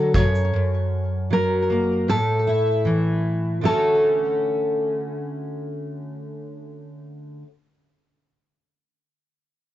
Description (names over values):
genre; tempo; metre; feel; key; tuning
acoustic pop; 77 BPM; 4/4; straight; D major; A4 = 440 Hz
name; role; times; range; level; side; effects
nylon-string guitar; melody; 0.0-7.4 s; A4 to C#5; -23 LUFS; equal; ping-pong delay
fingerpicked steel-string acoustic guitar; accompaniment; 0.0-7.5 s; F#2 to F#4; -22 LUFS; equal; double-tracked left and right
vintage brush drum kit; drums; 0.1-0.5 s; kick drum, shaker, snare drum; -23 LUFS; equal; none
room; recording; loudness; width
light reverb; worn, warbling old tape, cassette tape, warbly pitch drift, nothing above 7.8 kHz; -19 LUFS; side -13 dB against mid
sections
0.0-3.6 A section; 3.6-6.8 B section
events
none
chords
0.1 F#; 2.1 A5; 3.6 Dmaj7